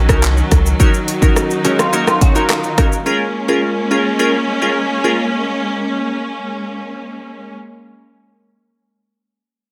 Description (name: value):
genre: dancehall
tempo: 106 BPM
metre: 4/4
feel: straight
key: Bb minor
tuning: A4 = 440 Hz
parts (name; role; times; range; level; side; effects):
- clear studio string section; sustained chords; 0.0-7.6 s; Eb3 to Eb4; -22 LUFS; equal; sidechain pumping
- punchy sub bass; bass; 0.0-0.7 s; Bb1 to Db2; -16 LUFS; equal; none
- glassy wavetable pluck; accompaniment; 0.1-5.2 s; Db4 to Bb4; -20 LUFS; equal; chorus
- pop drum kit; drums; 0.1-3.1 s; handclaps, hi-hat, kick drum, rim click, shaker; -16 LUFS; equal; none
- electric guitar at the edge of break-up; arpeggios; 1.6-3.0 s; Ab3 to Bb4; -21 LUFS; equal; ensemble chorus, tape echo
room: light reverb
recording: none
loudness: -16 LUFS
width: mono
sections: 0.0-7.6 A section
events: none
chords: 0.0 Ebm7; 3.1 Bbm7